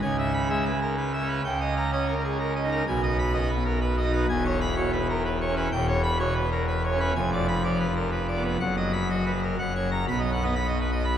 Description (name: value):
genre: classical, organ toccata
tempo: 126 BPM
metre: 3/4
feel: straight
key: G# minor, B major from 4.3 s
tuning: A4 = 437 Hz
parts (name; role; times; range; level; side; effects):
- pipe organ, full organ; solo; 0.0-11.2 s; E1 to B5; -23 LUFS; equal; none
room: wet church reverb, RT60 3.6 s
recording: none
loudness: -23 LUFS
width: side -9 dB against mid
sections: 0.0-10.1 A section; 10.1-11.2 B section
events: none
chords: 0.0 C#m7; 1.4 D#7/C#; 2.9 G#m/B; 4.3 C#m7/E; 5.7 C#m7b5/E; 7.2 Fdim7; 8.6 B/F#; 9.6 F#; 10.1 B